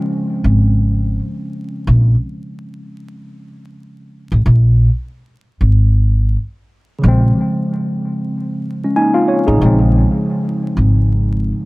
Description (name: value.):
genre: hip hop, boom-bap hip-hop.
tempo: 93 BPM.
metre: 4/4.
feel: swing 57% on 16ths.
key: Bb minor.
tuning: A4 = 440 Hz.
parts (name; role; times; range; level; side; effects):
tine electric piano; accompaniment; 0.0-11.7 s; Db3 to Ab5; -17 LUFS; equal; medium stereo tremolo, cassette tape, high-pass filter, low-pass filter, tape echo.
upright bass; bass; 0.4-11.5 s; Ab1 to Bb1; -12 LUFS; equal; none.
room: light reverb.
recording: echo-heavy mix, vinyl crackle.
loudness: -12 LUFS.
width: side -23 dB against mid.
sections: 0.0-11.7 A section.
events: none.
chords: 0.0 Bbm9.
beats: 0.58 1.22 | 1.87 2.51 3.16 3.81 | 4.45 5.09 5.74 6.38 | 7.03 7.68 8.32 8.97 | 9.61 10.26 10.90 11.55.